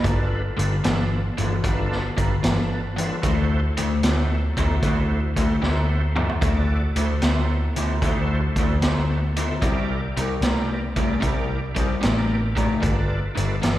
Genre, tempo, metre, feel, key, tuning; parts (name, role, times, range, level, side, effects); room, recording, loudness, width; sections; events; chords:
blues rock power trio and southern rock; 75 BPM; 4/4; swing 68% on 8ths; G major; A4 = 441 Hz
overdriven tonewheel organ; sustained chords; 0.0-13.8 s; D4 to D5; -30 LUFS; right 2 dB; slow rotary speaker, chorus vibrato
raw garage guitar; riff; 0.0-13.8 s; G2 to B3; -25 LUFS; left 2 dB; overdrive, slapback echo
vintage muted picked electric bass; bass; 0.0-13.8 s; G1 to D2; -24 LUFS; equal
vintage drum kit; drums; 0.0-13.8 s; hi-hat, kick drum, snare drum, toms; -26 LUFS; equal
light reverb; live gig heard through the venue's PA, recital hall reverb; -20 LUFS; side -14 dB against mid
0.0-13.8 A section
drum fill 5.6-6.4
0.0 G7; 3.2 D7; 9.6 C7; 12.8 G7